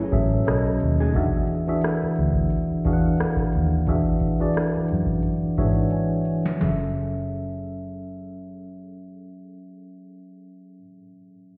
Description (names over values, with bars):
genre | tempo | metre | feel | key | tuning
R&B, neo-soul | 88 BPM | 4/4 | swing 55% on 16ths | F# minor | A4 = 440 Hz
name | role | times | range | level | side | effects
tine electric piano | accompaniment | 0.0-11.6 s | B2 to G#5 | -27 LUFS | equal | none
vintage muted fingered electric bass | bass | 0.0-10.8 s | F#1 to G#2 | -28 LUFS | equal | none
booming analog drum machine | drums | 0.1-6.8 s | hi-hat, kick drum, rim click, snare drum | -30 LUFS | equal | none
electric guitar through a small old amp | second line | 1.0-1.1 s | A3 to G#4 | -36 LUFS | equal | tape echo
room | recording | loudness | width
light reverb | heard muffled through a wall, stone room reverb, EQ, nothing above 10.4 kHz | -23 LUFS | mono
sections
0.0-6.6 A section; 6.6-9.3 B section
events
tine electric piano fill 5.2-6.6; drum fill 5.9-6.6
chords
0.5 B13; 1.1 E9; 6.6 F#m9